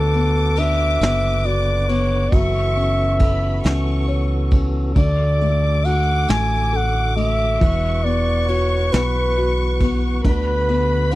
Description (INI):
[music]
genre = six-eight pop ballad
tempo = 46 BPM (dotted quarters)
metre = 6/8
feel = straight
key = unclear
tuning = A4 = 439 Hz
[part]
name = mellow flugelhorn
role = melody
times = 0.0-11.2 s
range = A4 to G#5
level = -22 LUFS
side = equal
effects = none
[part]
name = warm studio violin section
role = second line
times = 0.0-11.2 s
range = B5 to D6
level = -28 LUFS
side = left 3 dB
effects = none
[part]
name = felt-muted upright piano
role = accompaniment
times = 0.0-11.2 s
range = D3 to C#5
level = -25 LUFS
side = left 4 dB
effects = none
[part]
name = tonewheel organ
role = sustained chords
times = 0.0-11.2 s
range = D3 to B4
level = -29 LUFS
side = right 1 dB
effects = overdrive, fast rotary speaker
[part]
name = fingered electric bass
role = bass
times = 0.0-11.2 s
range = E1 to D2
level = -20 LUFS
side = equal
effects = none
[part]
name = vintage brush drum kit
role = drums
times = 0.1-11.2 s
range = kick drum, ride cymbal, snare drum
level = -20 LUFS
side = equal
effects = none
[sound]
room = little or no reverb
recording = dry, close 1970s-style studio recording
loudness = -16 LUFS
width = side -17 dB against mid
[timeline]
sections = 0.0-11.2 A section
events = none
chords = 0.0 Bm/D; 2.3 F#m7; 5.0 D; 7.6 Esus2; 10.2 Bm/D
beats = 1.01 | 2.33 3.64 | 4.96 6.29 | 7.62 8.93 | 10.24